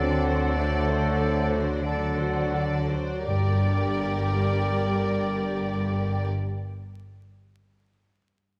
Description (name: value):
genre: classical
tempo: 40-52 BPM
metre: 4/4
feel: rubato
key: G minor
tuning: A4 = 439 Hz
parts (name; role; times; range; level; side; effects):
- rich studio violin section; melody; 0.0-6.3 s; C5 to D5; -39 LUFS; equal; none
- large flute ensemble; second line; 0.0-6.3 s; F#5 to G5; -39 LUFS; equal; none
- rich studio violin section; second line; 0.0-6.3 s; A4 to D5; -42 LUFS; equal; none
- warm clarinet; second line; 0.0-6.3 s; A4 to D5; -40 LUFS; equal; none
- warm oboe; second line; 0.0-6.3 s; A4 to D5; -36 LUFS; equal; none
- rich studio viola section; accompaniment; 0.0-6.3 s; D4 to G4; -40 LUFS; equal; none
- warm bassoon; accompaniment; 0.0-6.3 s; D3 to F#3; -38 LUFS; equal; none
- warm French horn section; sustained chords; 0.0-6.3 s; F#3 to C4; -35 LUFS; equal; none
- concert harp; arpeggios; 0.0-7.2 s; G2 to A4; -42 LUFS; equal; none
- rich studio double bass section; bass; 0.0-6.3 s; G1 to D2; -31 LUFS; equal; none
- warm studio cello section; bass; 0.0-6.3 s; G2 to D3; -32 LUFS; equal; none
- timpani; percussion; 3.3-6.3 s; G2; -30 LUFS; equal; none
room: wet scoring stage reverb, RT60 1.6 s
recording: vinyl crackle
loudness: -26 LUFS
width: mono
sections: 0.0-3.3 A section; 3.3-8.6 B section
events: slowing down 0.0-3.3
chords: 0.0 D7; 3.3 Gm